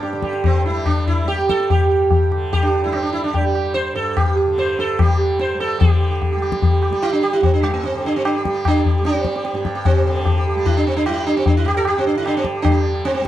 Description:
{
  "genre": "indian classical, Hindustani",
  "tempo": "148 BPM",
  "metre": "5/4",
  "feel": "straight",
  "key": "G raga durga",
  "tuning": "A4 = 440 Hz",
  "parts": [
    { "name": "sitar", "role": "melody", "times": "0.0-13.3 s", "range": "G3 to C5", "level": "-18 LUFS", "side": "right 2 dB", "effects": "plate reverb" },
    { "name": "tanpura", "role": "drone", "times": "0.0-13.3 s", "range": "G2 to G3", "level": "-29 LUFS", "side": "right 1 dB", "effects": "none" },
    { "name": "tabla", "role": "percussion", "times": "0.0-13.3 s", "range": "none", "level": "-18 LUFS", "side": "left 3 dB", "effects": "none" }
  ],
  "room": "light reverb",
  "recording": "dark, warm production",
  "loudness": "-16 LUFS",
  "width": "side -12 dB against mid",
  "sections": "0.0-5.8 A section; 5.8-13.3 B section",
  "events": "speeding up 0.0-13.3",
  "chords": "none"
}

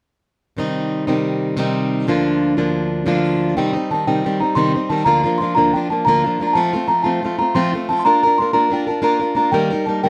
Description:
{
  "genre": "celtic folk, Celtic slip jig",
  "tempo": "121 BPM (dotted quarters)",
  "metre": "9/8",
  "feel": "straight",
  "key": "C dorian",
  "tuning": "A4 = 438 Hz",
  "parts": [
    { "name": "fingerpicked plugged-in steel-string acoustic guitar", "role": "accompaniment", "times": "0.6-10.1 s", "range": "D2 to Bb4", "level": "-20 LUFS", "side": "equal", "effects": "none" },
    { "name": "small celesta", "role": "melody", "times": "3.6-10.1 s", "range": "G5 to C6", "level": "-20 LUFS", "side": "equal", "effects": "none" }
  ],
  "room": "moderate studio ambience, RT60 0.5 s",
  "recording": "none",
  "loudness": "-18 LUFS",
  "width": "mono",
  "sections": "0.6-3.6 A section; 3.6-10.1 B section",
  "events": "none",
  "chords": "0.6 Cm; 2.1 Bb/D; 3.6 Cm; 5.1 Bb/D; 6.6 F; 8.0 Bb; 9.5 Eb"
}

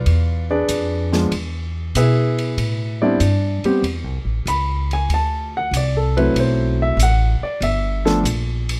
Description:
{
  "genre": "jazz piano trio",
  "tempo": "95 BPM",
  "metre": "4/4",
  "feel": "swing 69% on 8ths",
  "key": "unclear",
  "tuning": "A4 = 440 Hz",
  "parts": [
    { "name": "warm grand piano", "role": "melody", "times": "0.0-8.2 s", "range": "F3 to B5", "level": "-22 LUFS", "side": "equal", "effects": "plate reverb" },
    { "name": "upright bass", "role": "bass", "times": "0.0-8.8 s", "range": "G1 to B2", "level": "-22 LUFS", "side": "equal", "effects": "none" },
    { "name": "compact cocktail drum kit", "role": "drums", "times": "0.1-8.8 s", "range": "hi-hat, ride cymbal, snare drum", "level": "-33 LUFS", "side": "equal", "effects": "none" }
  ],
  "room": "light reverb",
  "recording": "close, detailed microphones",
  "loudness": "-19 LUFS",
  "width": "mono",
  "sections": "0.0-8.8 A section",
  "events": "grand piano solo 0.0-8.8",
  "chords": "0.1 E7b9; 2.6 A7(no3); 5.1 D9; 7.6 Gsus2"
}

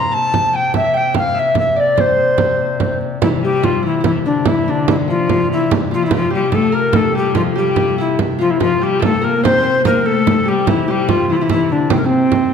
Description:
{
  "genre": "medieval dance",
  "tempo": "97 BPM (dotted quarters)",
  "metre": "6/8",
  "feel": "straight",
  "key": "C mixolydian",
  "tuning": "A4 = 438 Hz",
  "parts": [
    { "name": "mellow tenor recorder", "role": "melody", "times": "0.0-12.5 s", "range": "C4 to Bb5", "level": "-17 LUFS", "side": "left 2 dB", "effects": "none" },
    { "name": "Celtic harp", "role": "second line", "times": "0.0-12.5 s", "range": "C4 to C6", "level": "-22 LUFS", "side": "right 3 dB", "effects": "none" },
    { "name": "pipe organ, foundations", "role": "drone", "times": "0.0-12.5 s", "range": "C3", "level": "-24 LUFS", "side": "left 8 dB", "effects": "none" },
    { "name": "frame drum", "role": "percussion", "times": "0.3-12.5 s", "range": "none", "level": "-20 LUFS", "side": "right 6 dB", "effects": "none" },
    { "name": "dark viola da gamba", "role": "second line", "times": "3.2-12.5 s", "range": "C3 to C4", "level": "-20 LUFS", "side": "left 5 dB", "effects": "none" }
  ],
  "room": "wet recital hall reverb, RT60 1.4 s",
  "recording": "none",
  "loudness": "-13 LUFS",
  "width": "side -7 dB against mid",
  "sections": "0.0-3.2 A section; 3.2-12.5 A section",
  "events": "none",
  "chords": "none"
}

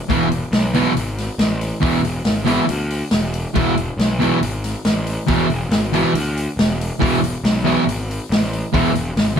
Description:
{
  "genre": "garage rock duo or trio",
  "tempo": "139 BPM",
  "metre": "4/4",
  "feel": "straight",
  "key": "E mixolydian",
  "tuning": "A4 = 440 Hz",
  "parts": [
    { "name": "fuzz guitar", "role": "riff", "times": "0.1-9.4 s", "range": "E2 to E3", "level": "-17 LUFS", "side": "right 1 dB", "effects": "distortion" },
    { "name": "fuzz picked electric bass", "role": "bass", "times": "0.1-9.4 s", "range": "E1 to D2", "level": "-23 LUFS", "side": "equal", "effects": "overdrive" },
    { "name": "vintage drum kit", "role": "drums", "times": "0.1-9.4 s", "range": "hi-hat, kick drum, snare drum", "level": "-21 LUFS", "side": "equal", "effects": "none" }
  ],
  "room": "moderate studio reverb, RT60 0.7 s",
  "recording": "band playing live in one room",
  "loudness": "-16 LUFS",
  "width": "side -8 dB against mid",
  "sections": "0.0-9.4 A section",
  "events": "none",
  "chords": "0.0 E"
}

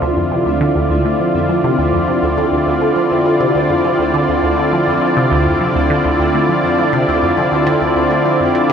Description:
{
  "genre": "ambient, sequencer-driven space music",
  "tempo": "102 BPM",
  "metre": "4/4",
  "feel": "straight",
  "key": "D minor",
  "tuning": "A4 = 440 Hz",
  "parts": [
    { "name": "sweeping resonant pad", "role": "sustained chords", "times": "0.0-8.7 s", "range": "D3 to D5", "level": "-14 LUFS", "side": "equal", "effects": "chorus" },
    { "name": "resonant blip pluck", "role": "riff", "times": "0.0-8.7 s", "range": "D2 to A3", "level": "-18 LUFS", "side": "equal", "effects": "phaser, analog delay" },
    { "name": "pulsing gated texture", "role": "texture", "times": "0.0-8.7 s", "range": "C4 to E5", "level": "-28 LUFS", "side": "left 1 dB", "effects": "none" }
  ],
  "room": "wet lush hall reverb, RT60 2.7 s",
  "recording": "dreamy mix soaked in reverb",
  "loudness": "-12 LUFS",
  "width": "side -7 dB against mid",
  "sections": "0.0-8.7 A section",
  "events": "none",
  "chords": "0.0 Dm7"
}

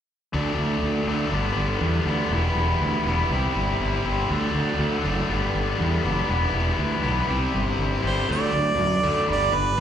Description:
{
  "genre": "rock",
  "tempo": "121 BPM",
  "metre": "4/4",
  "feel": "straight",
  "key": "unclear",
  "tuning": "A4 = 440 Hz",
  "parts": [
    { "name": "overdriven electric guitar", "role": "riff", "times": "0.3-9.8 s", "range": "G2 to E4", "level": "-24 LUFS", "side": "left 3 dB", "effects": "slapback echo" },
    { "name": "fuzz fingered electric bass", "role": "bass", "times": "0.3-9.7 s", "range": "E1 to F#2", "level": "-24 LUFS", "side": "right 1 dB", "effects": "overdrive" },
    { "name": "clear harmonica", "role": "melody", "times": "8.1-9.8 s", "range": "B4 to D5", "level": "-23 LUFS", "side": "right 4 dB", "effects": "slapback echo" }
  ],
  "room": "light reverb, small room ambience",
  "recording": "live gig heard through the venue's PA, recital hall reverb",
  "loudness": "-21 LUFS",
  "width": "side -9 dB against mid",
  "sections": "0.3-8.3 A section; 8.3-9.8 B section",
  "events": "none",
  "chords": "0.3 D; 1.3 G6; 2.3 Em; 3.3 C; 4.3 D; 5.3 G6; 6.3 Em; 7.3 C; 8.3 D; 9.3 G"
}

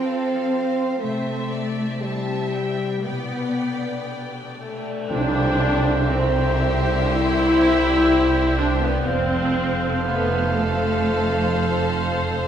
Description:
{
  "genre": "cinematic, emotional film score for orchestra",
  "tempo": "60 BPM",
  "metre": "4/4",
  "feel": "rubato",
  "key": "C major",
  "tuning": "A4 = 439 Hz",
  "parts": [
    { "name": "clear symphonic violin section", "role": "second line", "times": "0.0-12.5 s", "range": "G4 to A5", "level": "-29 LUFS", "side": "equal", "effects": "none" },
    { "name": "rich symphonic viola section", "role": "accompaniment", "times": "0.0-12.0 s", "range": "F3 to E4", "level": "-24 LUFS", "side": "right 1 dB", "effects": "none" },
    { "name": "dark French horn section", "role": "sustained chords", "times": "0.0-12.0 s", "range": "G3 to E4", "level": "-26 LUFS", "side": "left 2 dB", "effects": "none" },
    { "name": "concert harp", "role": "arpeggios", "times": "0.0-12.5 s", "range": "B2 to C5", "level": "-29 LUFS", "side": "left 3 dB", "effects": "none" },
    { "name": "rich symphonic cello section", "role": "bass", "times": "0.0-12.5 s", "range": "C2 to C4", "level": "-29 LUFS", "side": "right 3 dB", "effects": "none" },
    { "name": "cymbal swell and tam-tam", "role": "percussion", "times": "1.0-9.0 s", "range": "none", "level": "-33 LUFS", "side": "equal", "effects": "none" },
    { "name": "clear symphonic violin section", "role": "melody", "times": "5.1-12.5 s", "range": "E5 to F5", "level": "-32 LUFS", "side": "left 4 dB", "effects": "none" },
    { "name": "mellow clarinet", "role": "second line", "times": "5.1-12.5 s", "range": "C5", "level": "-30 LUFS", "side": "left 2 dB", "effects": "none" },
    { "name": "warm oboe", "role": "second line", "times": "5.1-12.5 s", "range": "F5 to G5", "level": "-31 LUFS", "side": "right 3 dB", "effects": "none" },
    { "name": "rich symphonic double bass section", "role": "bass", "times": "5.1-12.5 s", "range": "F1 to C2", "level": "-26 LUFS", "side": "right 2 dB", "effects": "none" }
  ],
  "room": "wet recital hall reverb, RT60 1.4 s",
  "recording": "recorded in a church or concert hall",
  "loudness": "-19 LUFS",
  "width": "side -9 dB against mid",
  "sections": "0.0-5.1 A section; 5.1-12.5 A section",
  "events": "band accent 5.1-6.1",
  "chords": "0.0 F; 1.0 C; 3.0 Gadd9/B; 5.1 C; 9.1 F"
}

